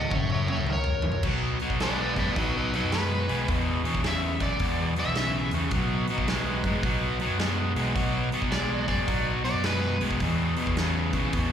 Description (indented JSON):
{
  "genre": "blues rock power trio and southern rock",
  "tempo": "107 BPM",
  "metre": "4/4",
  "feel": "swing 65% on 8ths",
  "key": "B major",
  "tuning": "A4 = 440 Hz",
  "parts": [
    { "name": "overdriven slide guitar", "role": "melody", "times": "0.0-10.0 s", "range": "D#4 to F#5", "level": "-31 LUFS", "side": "equal", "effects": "slapback echo" },
    { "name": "biting lead guitar", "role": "second line", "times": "0.0-1.2 s", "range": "A#4 to D#5", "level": "-35 LUFS", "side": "right 6 dB", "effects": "overdrive, slapback echo" },
    { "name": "overdriven tonewheel organ", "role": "sustained chords", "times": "0.0-11.5 s", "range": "A3 to D5", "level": "-39 LUFS", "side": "right 3 dB", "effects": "slow rotary speaker" },
    { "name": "overdriven electric guitar", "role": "riff", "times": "0.0-11.5 s", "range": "E2 to G#3", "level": "-28 LUFS", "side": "left 1 dB", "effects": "none" },
    { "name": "big rock drum kit", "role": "drums", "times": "0.0-11.5 s", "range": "crash cymbal, hi-hat, kick drum, snare drum, toms", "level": "-31 LUFS", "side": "equal", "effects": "none" },
    { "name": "overdriven picked electric bass", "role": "bass", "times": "0.1-11.5 s", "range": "F#1 to F#2", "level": "-30 LUFS", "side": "equal", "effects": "none" }
  ],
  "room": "light reverb",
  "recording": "live gig heard through the venue's PA, club reverb",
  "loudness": "-24 LUFS",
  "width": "side -9 dB against mid",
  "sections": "0.0-1.2 A section; 1.2-11.5 A section",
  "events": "drum fill 0.0-1.2",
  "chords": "0.0 F#; 1.2 B; 3.5 E; 5.7 B; 10.2 E"
}